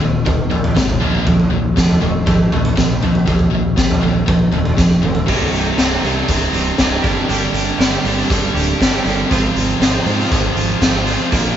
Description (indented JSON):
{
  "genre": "quiet-loud alternative rock",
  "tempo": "119 BPM",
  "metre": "4/4",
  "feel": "straight",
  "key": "C minor",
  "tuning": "A4 = 437 Hz",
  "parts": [
    { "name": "biting overdriven guitar", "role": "riff", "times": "0.0-11.6 s", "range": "C2 to Bb3", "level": "-21 LUFS", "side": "right 8 dB", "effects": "none" },
    { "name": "scooped high-gain guitar", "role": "riff", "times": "0.0-11.6 s", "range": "C2 to Bb3", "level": "-20 LUFS", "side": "left 7 dB", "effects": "distortion" },
    { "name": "picked electric bass", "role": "bass", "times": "0.0-11.5 s", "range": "C1 to Ab2", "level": "-21 LUFS", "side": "equal", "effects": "none" },
    { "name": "raw garage drum kit", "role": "drums", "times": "0.0-11.4 s", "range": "crash cymbal, hi-hat, kick drum, snare drum, toms", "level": "-17 LUFS", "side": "equal", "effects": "none" },
    { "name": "twelve-string electric guitar", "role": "arpeggios", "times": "5.3-11.6 s", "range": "C2 to Bb4", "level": "-23 LUFS", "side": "right 7 dB", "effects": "harmonic tremolo" }
  ],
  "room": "moderate studio reverb, RT60 0.6 s",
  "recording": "band playing live in one room, nothing above 7.7 kHz",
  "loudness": "-13 LUFS",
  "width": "side -10 dB against mid",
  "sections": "0.0-5.3 A section; 5.3-11.6 B section",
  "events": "drum fill 4.8-5.3",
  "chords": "0.0 Eb5; 1.0 Bb5; 5.3 Cm; 7.0 Gm; 9.3 Fm/Ab",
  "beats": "0.26 0.76 | 1.26 1.77 2.27 2.77 | 3.27 3.78 4.28 4.78 | 5.28 5.79 6.29 6.79 | 7.29 7.80 8.30 8.80 | 9.31 9.81 10.31 10.81 | 11.32"
}